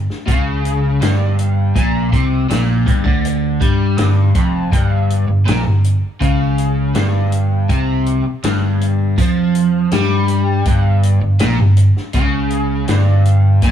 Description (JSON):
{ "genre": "psychedelic rock", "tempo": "81 BPM", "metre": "4/4", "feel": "straight", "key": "unclear", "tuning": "A4 = 442 Hz", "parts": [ { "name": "fingered electric bass", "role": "bass", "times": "0.0-13.7 s", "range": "F1 to G2", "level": "-17 LUFS", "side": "equal", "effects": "none" }, { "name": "vintage drum kit", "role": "drums", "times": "0.1-13.7 s", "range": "hi-hat, kick drum, snare drum", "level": "-19 LUFS", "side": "equal", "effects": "none" }, { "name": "crunchy overdriven guitar", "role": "riff", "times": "0.3-13.7 s", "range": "F2 to G3", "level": "-16 LUFS", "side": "equal", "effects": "flanger" } ], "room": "small room ambience", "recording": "none", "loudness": "-13 LUFS", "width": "side -9 dB against mid", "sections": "0.0-13.7 A section", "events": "none", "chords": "0.0 G5" }